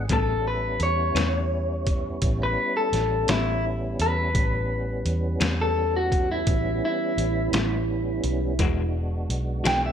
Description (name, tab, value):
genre	slow blues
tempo	57 BPM (dotted quarters)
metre	12/8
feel	straight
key	unclear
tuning	A4 = 440 Hz
part	tonewheel organ	sustained chords	0.0-9.9 s	E3 to F#4	-33 LUFS	right 1 dB	slow rotary speaker, chorus vibrato
part	vintage muted fingered electric bass	bass	0.0-9.9 s	E1 to E2	-27 LUFS	equal	none
part	electric guitar through a small old amp	melody	0.1-9.9 s	E4 to G5	-26 LUFS	equal	spring reverb
part	electric guitar at the edge of break-up	accompaniment	0.1-9.9 s	A2 to F#4	-30 LUFS	left 6 dB	tremolo
part	trip hop sampler-style drum kit	drums	0.1-9.8 s	hi-hat, kick drum, snare drum	-27 LUFS	equal	none
room	light reverb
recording	none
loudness	-22 LUFS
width	side -8 dB against mid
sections	0.0-9.9 A section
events	clean electric guitar solo 0.0-9.9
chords	0.1 A9; 8.6 E9